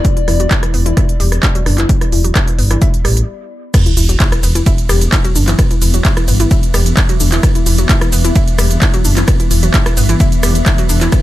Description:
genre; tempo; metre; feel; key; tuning
driving peak-time techno; 130 BPM; 4/4; straight; E minor; A4 = 443 Hz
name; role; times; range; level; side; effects
electronic kick drum; drums; 0.0-11.2 s; none; -13 LUFS; equal; none
techno drum kit; drums; 0.0-11.2 s; crash cymbal, handclaps, hi-hat, ride cymbal, rim click, shaker; -18 LUFS; right 1 dB; sidechain pumping on hats, sidechain pumping on cymbals, sidechain pumping on perc
warbly tape-like pad; texture; 0.0-11.2 s; B3 to B5; -27 LUFS; left 2 dB; chorus, built-in reverb, phaser, sidechain pumping
analog pluck; riff; 0.2-11.1 s; D3 to E4; -21 LUFS; equal; chorus, tube saturation, sidechain pumping, dub echo
growling FM bass; bass; 0.3-11.1 s; E1 to A1; -14 LUFS; equal; tube saturation, sidechain pumping
swarming drone; drone; 4.9-11.2 s; E3 to B3; -22 LUFS; left 1 dB; built-in reverb, sidechain pumping
sub drop; sound effects; 3.7-5.6 s; none; -21 LUFS; equal; none
room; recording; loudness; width
little or no reverb; lossy compression artefacts; -10 LUFS; side -15 dB against mid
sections
0.0-3.7 A section; 3.7-11.2 B section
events
stop 3.3-3.7; drop 3.7-11.2; impact 3.7-5.6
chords
0.0 E5

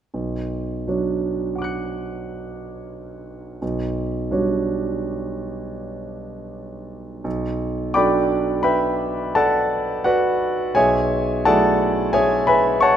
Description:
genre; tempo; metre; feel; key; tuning
classical, impressionist solo piano; 86 BPM; 5/4; rubato; B minor; A4 = 440 Hz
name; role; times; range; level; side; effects
clear concert grand piano; solo; 0.1-13.0 s; B1 to C#7; -19 LUFS; equal; none
room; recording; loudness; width
moderate scoring stage reverb, RT60 1.9 s; close, detailed microphones; -18 LUFS; side -9 dB against mid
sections
0.1-7.3 A section; 7.3-13.0 B section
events
none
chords
0.1 Bmadd9; 3.6 Gmaj7#11/B; 7.3 Bm7; 10.8 F#m9/B

